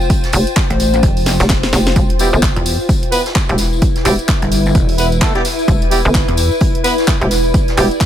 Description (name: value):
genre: bass house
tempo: 129 BPM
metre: 4/4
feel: swing 60% on 16ths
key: E phrygian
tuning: A4 = 440 Hz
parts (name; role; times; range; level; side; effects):
- hollow knocking FM bass; bass; 0.0-7.9 s; E1 to G1; -15 LUFS; equal; sidechain pumping
- tambourine; percussion; 0.0-8.1 s; none; -27 LUFS; left 6 dB; none
- granular cloud pad; texture; 0.0-8.1 s; E4 to G5; -20 LUFS; left 2 dB; built-in reverb, sidechain pumping
- electronic kick drum; drums; 0.1-8.1 s; none; -15 LUFS; equal; overdrive
- house drum kit; drums; 0.1-8.1 s; handclaps, hi-hat, snare drum; -21 LUFS; right 1 dB; none
- vintage brush drum kit; drums; 0.1-8.1 s; hi-hat, snare drum; -30 LUFS; right 2 dB; none
- pulsing pluck wobble bass; bass; 0.7-6.5 s; E1 to E2; -15 LUFS; equal; chorus, overdrive, sidechain pumping
- warm horn section; stabs; 2.2-7.9 s; G3 to B4; -20 LUFS; right 1 dB; sidechain pumping, ping-pong delay
room: studio reverb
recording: none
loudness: -11 LUFS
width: side -10 dB against mid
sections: 0.0-8.1 A section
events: drum fill 1.3-2.0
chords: 0.0 Fadd9; 2.0 Em